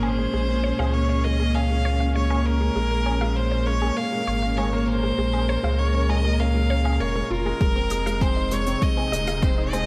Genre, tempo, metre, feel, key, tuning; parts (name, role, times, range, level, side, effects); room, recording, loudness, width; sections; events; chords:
piano and strings electronica; 99 BPM; 4/4; straight; Bb minor; A4 = 440 Hz
clear violin; melody; 0.0-9.9 s; Bb4 to F5; -30 LUFS; equal
dark studio string section; sustained chords; 0.0-9.9 s; Bb2 to Bb4; -33 LUFS; equal; sidechain pumping
warm concert grand piano; riff; 0.0-9.9 s; Ab3 to Bb4; -30 LUFS; equal; delay
warm sub bass; bass; 0.0-9.9 s; Eb1 to Db2; -26 LUFS; equal; sidechain pumping
woodblock and hi-hat; drums; 0.0-9.9 s; -37 LUFS; equal
unison pluck; arpeggios; 0.2-9.8 s; Ab4 to F5; -38 LUFS; equal
electronic kick drum; drums; 7.6-9.5 s; -25 LUFS; equal; overdrive
light reverb, small room ambience; -23 LUFS; mono
0.0-9.9 A section
build-up 0.0-9.9
0.0 Bbm7; 7.6 Fm7